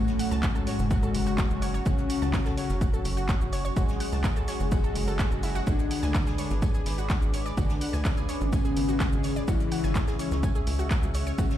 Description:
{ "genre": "melodic techno", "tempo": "126 BPM", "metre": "4/4", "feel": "straight", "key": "F# minor", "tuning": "A4 = 440 Hz", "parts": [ { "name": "soft octave-layered synth lead", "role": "melody", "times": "0.0-11.6 s", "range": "G#3 to G#4", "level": "-32 LUFS", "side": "left 3 dB", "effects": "chorus, phaser, sidechain pumping, digital delay" }, { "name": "big bright polysynth", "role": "second line", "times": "0.0-11.6 s", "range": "G#2 to G#3", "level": "-36 LUFS", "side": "right 1 dB", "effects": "sidechain pumping, digital delay" }, { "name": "dark analog pad", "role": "sustained chords", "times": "0.0-11.6 s", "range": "F#4 to E6", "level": "-40 LUFS", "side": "right 2 dB", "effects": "chorus, sidechain pumping" }, { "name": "wide unison pluck", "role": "arpeggios", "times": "0.0-11.5 s", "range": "E4 to A6", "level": "-39 LUFS", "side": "right 2 dB", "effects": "sidechain pumping, digital delay" }, { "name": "analog synth brass", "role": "stabs", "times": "0.0-11.6 s", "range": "C#3 to G#4", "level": "-36 LUFS", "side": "left 2 dB", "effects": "chorus, vintage 12-bit sampler grit, sidechain pumping, digital delay" }, { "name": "tight sequencer bass", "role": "bass", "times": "0.0-11.5 s", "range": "F#1 to D2", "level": "-30 LUFS", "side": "equal", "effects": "sidechain pumping" }, { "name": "jazz brush drum kit", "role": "drums", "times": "0.1-11.6 s", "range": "hi-hat, snare drum, tambourine", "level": "-47 LUFS", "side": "equal", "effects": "sidechain pumping on hats, high-pass filter on hats, high-pass filter on snare, sidechain pumping on perc, high-pass filter on perc, high-pass filter on room" }, { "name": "punchy analog drum machine", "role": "drums", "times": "0.1-11.6 s", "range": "handclaps, hi-hat, shaker", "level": "-37 LUFS", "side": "right 1 dB", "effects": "sidechain pumping on perc, sidechain pumping on hats" }, { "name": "electronic kick drum", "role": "drums", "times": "0.4-11.5 s", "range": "none", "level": "-27 LUFS", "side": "equal", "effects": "none" } ], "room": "light reverb, digital ambience", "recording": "played on a big sound system in a bare room, large studio reverb", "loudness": "-24 LUFS", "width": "side -12 dB against mid", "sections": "0.0-11.6 A section", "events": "none", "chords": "0.0 F#m; 5.7 G#dim; 9.5 C#m" }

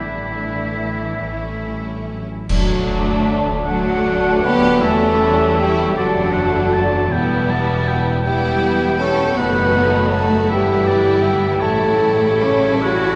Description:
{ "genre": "classical, slow romantic movement for symphony orchestra", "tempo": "53 BPM (dotted quarters)", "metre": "6/8", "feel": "uneven beats, rubato", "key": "D major", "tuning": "A4 = 438 Hz", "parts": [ { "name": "clear studio violin section", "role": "melody", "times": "0.0-13.2 s", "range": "D4 to D5", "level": "-31 LUFS", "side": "equal", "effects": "none" }, { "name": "rich studio violin section", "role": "second line", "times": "0.0-13.2 s", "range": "A3 to E4", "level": "-28 LUFS", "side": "equal", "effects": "none" }, { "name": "silver concert flute", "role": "second line", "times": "0.0-13.2 s", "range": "E5 to F#6", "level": "-29 LUFS", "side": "equal", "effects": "none" }, { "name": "warm oboe", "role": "second line", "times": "0.0-13.2 s", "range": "E4 to A5", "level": "-27 LUFS", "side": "equal", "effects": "none" }, { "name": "rich studio viola section", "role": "accompaniment", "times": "0.0-13.2 s", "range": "C#3 to B3", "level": "-27 LUFS", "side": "equal", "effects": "none" }, { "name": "dark French horn section", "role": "sustained chords", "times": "0.0-13.2 s", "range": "E3 to C#5", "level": "-22 LUFS", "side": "equal", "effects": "none" }, { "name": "clear studio double bass section", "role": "bass", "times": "0.0-13.2 s", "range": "E1 to E2", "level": "-26 LUFS", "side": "equal", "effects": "none" }, { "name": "rich studio cello section", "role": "bass", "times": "0.0-13.2 s", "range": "E3 to F#4", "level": "-27 LUFS", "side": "equal", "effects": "none" }, { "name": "bright trombone section", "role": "sustained chords", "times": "2.5-12.5 s", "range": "C#3 to D4", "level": "-29 LUFS", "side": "equal", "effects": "none" }, { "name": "clash cymbals and concert bass drum", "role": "percussion", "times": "2.5-4.0 s", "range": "none", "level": "-27 LUFS", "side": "equal", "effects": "none" } ], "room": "wet cathedral reverb, RT60 6.5 s", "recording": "recorded in a church or concert hall, nothing above 10.4 kHz", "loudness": "-17 LUFS", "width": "mono", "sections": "0.0-2.5 A section; 2.5-13.2 B section", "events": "band accent 2.5-3.3", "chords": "0.0 Asus4; 1.2 A; 2.5 D; 4.8 A7/E; 6.0 D/F#; 7.1 Em; 9.4 B7/F#; 10.5 Em/G; 11.6 A7" }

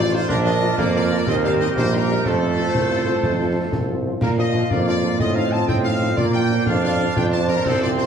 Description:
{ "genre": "military-style march for wind band", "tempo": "122 BPM (dotted quarters)", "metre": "6/8", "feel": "straight", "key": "Bb major", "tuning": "A4 = 439 Hz", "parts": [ { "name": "clear trumpet section", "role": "melody", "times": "0.0-8.1 s", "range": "A4 to A5", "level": "-26 LUFS", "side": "left 1 dB", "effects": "none" }, { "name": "dark woodwind section", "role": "second line", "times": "0.0-8.1 s", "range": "F4 to F5", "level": "-26 LUFS", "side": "left 2 dB", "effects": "none" }, { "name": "mellow French horn section", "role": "accompaniment", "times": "0.0-8.0 s", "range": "F3 to Bb4", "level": "-29 LUFS", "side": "left 4 dB", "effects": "none" }, { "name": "bright trombone section", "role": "sustained chords", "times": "0.0-8.1 s", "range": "A3 to F4", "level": "-25 LUFS", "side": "right 4 dB", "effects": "none" }, { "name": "clear tuba", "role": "bass", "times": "0.0-8.1 s", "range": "A1 to Bb2", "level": "-21 LUFS", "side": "right 3 dB", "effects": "none" }, { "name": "concert snare drum, clash cymbals and concert bass drum", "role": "drums", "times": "0.1-8.1 s", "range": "none", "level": "-26 LUFS", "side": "left 1 dB", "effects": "none" } ], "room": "wet large studio reverb, RT60 1.2 s", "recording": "heavily compressed radio sound, multiband compression, studio reverb", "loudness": "-17 LUFS", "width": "side -7 dB against mid", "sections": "0.0-8.1 A section", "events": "none", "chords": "0.3 Bb; 1.3 Eb; 2.2 F; 4.2 Bb; 5.2 F7/A; 6.2 Bb; 7.2 F5" }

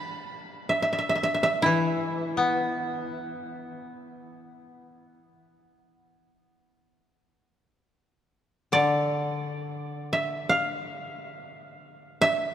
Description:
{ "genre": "japanese traditional", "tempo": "free time", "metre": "none", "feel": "none", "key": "E in sen", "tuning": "A4 = 440 Hz", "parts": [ { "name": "koto", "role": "melody", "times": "0.0-12.5 s", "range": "E4 to B5", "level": "-26 LUFS", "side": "right 1 dB", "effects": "none" }, { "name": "koto", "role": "accompaniment", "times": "0.0-12.1 s", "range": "D3 to B3", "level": "-29 LUFS", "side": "left 3 dB", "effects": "none" } ], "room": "wet cathedral reverb, RT60 5.1 s", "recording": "none", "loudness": "-24 LUFS", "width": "side -10 dB against mid", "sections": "0.0-7.3 A section; 7.3-12.5 A section", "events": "none", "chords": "none" }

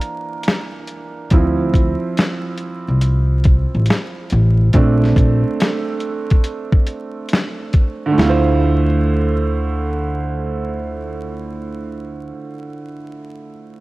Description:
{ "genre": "lo-fi hip hop", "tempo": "70 BPM", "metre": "4/4", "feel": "swing 65% on 16ths", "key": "D minor", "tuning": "A4 = 441 Hz", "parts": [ { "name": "clear upright piano", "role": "accompaniment", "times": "0.0-13.8 s", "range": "D3 to C5", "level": "-21 LUFS", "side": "right 3 dB", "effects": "none" }, { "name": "boom bap sampler-style drum kit", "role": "drums", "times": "0.0-8.4 s", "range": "hi-hat, kick drum, snare drum", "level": "-16 LUFS", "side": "equal", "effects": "none" }, { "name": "upright bass", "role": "bass", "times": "1.3-12.3 s", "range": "A1 to D2", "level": "-17 LUFS", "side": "equal", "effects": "none" } ], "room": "studio ambience", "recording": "home recording on cassette, vinyl crackle", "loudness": "-15 LUFS", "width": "side -19 dB against mid", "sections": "0.0-8.2 A section; 8.2-11.6 B section", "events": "upright piano solo 0.0-8.2", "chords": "0.0 C7 (rootless); 1.3 Dm7; 4.7 Bbmaj7; 8.2 Dm7" }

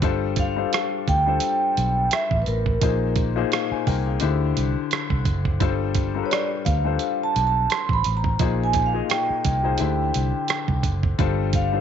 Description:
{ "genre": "R&B, neo-soul", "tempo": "86 BPM", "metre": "4/4", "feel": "swing 55% on 16ths", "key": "unclear", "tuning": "A4 = 440 Hz", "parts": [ { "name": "warm upright piano", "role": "accompaniment", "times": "0.0-11.8 s", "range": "Bb2 to Ab5", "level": "-26 LUFS", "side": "left 12 dB", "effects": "none" }, { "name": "vintage muted fingered electric bass", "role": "bass", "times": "0.0-11.8 s", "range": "F#1 to D2", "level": "-24 LUFS", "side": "right 1 dB", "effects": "none" }, { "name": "dusty soul sampler-style drum kit", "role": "drums", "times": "0.0-11.7 s", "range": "hi-hat, kick drum, rim click", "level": "-25 LUFS", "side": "right 4 dB", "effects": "none" }, { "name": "vibraphone with soft mallets", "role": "melody", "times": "0.4-11.8 s", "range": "Bb4 to C6", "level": "-24 LUFS", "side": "right 2 dB", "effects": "none" } ], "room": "light reverb, digital ambience", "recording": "1960s-style stereo, nothing above 7.7 kHz", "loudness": "-20 LUFS", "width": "side -8 dB against mid", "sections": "0.0-11.8 A section", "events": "none", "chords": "0.0 G9sus4; 2.8 Bb9sus4; 4.2 D9sus4; 5.6 G9sus4; 8.4 Bb9sus4; 9.8 D9sus4; 11.2 G9sus4" }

